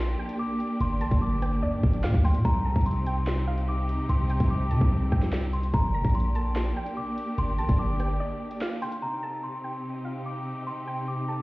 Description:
hip hop, drill; 146 BPM; 4/4; half-time; A4 = 440 Hz
celesta; melody; 0.0-11.4 s; Bb5 to D6; -34 LUFS; left 1 dB; ping-pong delay
soft round pluck; second line; 0.0-11.4 s; D5 to Bb5; -38 LUFS; right 2 dB; chorus, ping-pong delay
muted symphonic string section; sustained chords; 0.0-11.4 s; C3 to G4; -32 LUFS; equal
long sustained 808-style bass; bass; 0.0-8.2 s; F1 to C3; -26 LUFS; equal
drill drum kit; drums; 0.3-9.0 s; handclaps, hi-hat, kick drum, rim click, snare drum; -26 LUFS; equal
digital ambience; heard muffled through a wall, stone room reverb, vinyl crackle, EQ, nothing above 10.3 kHz; -24 LUFS; side -20 dB against mid
0.0-9.0 A section; 9.0-11.4 B section
break 8.2-9.0
0.0 Gm; 2.4 Cm; 5.7 Gm; 9.0 Cm

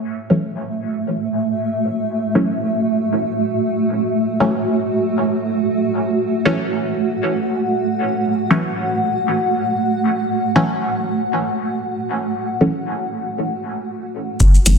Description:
dub techno; free time; F# minor; A4 = 439 Hz
granular cloud pad; sustained chords; 0.0-14.4 s; A3 to F#5; -19 LUFS; right 1 dB; built-in reverb, sidechain pumping
filtered dub chord stab; stabs; 0.3-14.7 s; E3 to C#4; -21 LUFS; left 1 dB; chorus, phaser, sidechain pumping, dub echo
pure sine sub bass; bass; 14.4-14.8 s; F#1; -12 LUFS; equal; sidechain pumping
electronic kick drum; drums; 14.4-14.5 s; -15 LUFS; equal
electronic shaker and hi-hat; drums; 14.4-14.8 s; -18 LUFS; left 1 dB
moderate lush hall reverb, RT60 2.0 s; dense, heavily limited modern master; -17 LUFS; side -6 dB against mid
0.0-14.4 A section
break 13.4-14.4
0.0 F#m7

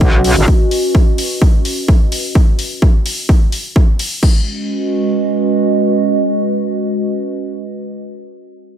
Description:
bass house; 128 BPM; 4/4; swing 57% on 16ths; G# minor; A4 = 440 Hz
metallic wobble bass; bass; 0.0-0.5 s; G#1 to B1; -12 LUFS; equal; chorus, tube saturation, sidechain pumping
electronic kick drum; drums; 0.0-4.3 s; -10 LUFS; equal; overdrive, small room ambience
warbly tape-like pad; texture; 0.0-7.8 s; G#3 to D#5; -17 LUFS; right 2 dB; chorus, built-in reverb, sidechain pumping
house drum kit; drums; 0.2-4.3 s; crash cymbal, hi-hat; -23 LUFS; left 2 dB; small room ambience
moderate lush hall reverb, RT60 2.3 s; -12 LUFS; side -10 dB against mid
0.0-4.2 A section; 4.2-8.0 B section
0.0 G#m (rootless); 4.2 G#m

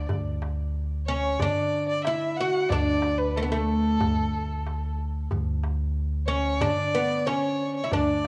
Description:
Arabic maqam ensemble; 92 BPM; 4/4; straight; D maqam ajam; A4 = 440 Hz
oud; melody; 0.0-8.3 s; A3 to F#4; -30 LUFS; equal; cassette tape
warm violin; second line; 0.0-8.3 s; A4 to F#5; -31 LUFS; equal; cassette tape
upright bass; bass; 0.0-8.3 s; D2 to D3; -32 LUFS; equal
darbuka; percussion; 0.1-8.3 s; -34 LUFS; equal
light reverb; home recording on cassette, small room ambience; -26 LUFS; mono
0.0-8.3 A section

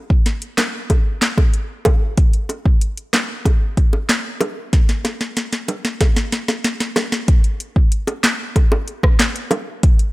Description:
dancehall; 94 BPM; 4/4; straight
afro-pop drum kit; drums; 0.1-10.1 s; handclaps, hi-hat, kick drum, rim click, snare drum; -15 LUFS; equal
bongos; percussion; 0.6-9.7 s; -23 LUFS; right 1 dB
digital ambience; -16 LUFS; side -20 dB against mid
0.0-7.3 A section; 7.3-10.1 B section
drum fill 4.7-7.3

